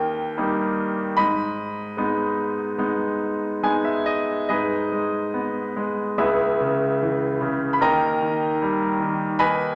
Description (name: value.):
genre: classical, lyrical solo piano.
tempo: 69-77 BPM.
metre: 4/4.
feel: rubato.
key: G# harmonic minor.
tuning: A4 = 440 Hz.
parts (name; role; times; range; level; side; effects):
bright concert grand piano; solo; 0.0-9.8 s; C#2 to B5; -23 LUFS; equal; none.
room: wet recital hall reverb, RT60 1.5 s.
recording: none.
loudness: -23 LUFS.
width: mono.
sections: 0.0-4.5 A section; 4.5-9.8 B section.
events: grand piano fill 3.2-4.5.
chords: 0.0 D#; 1.2 G#m; 6.2 C#m7; 7.8 D#.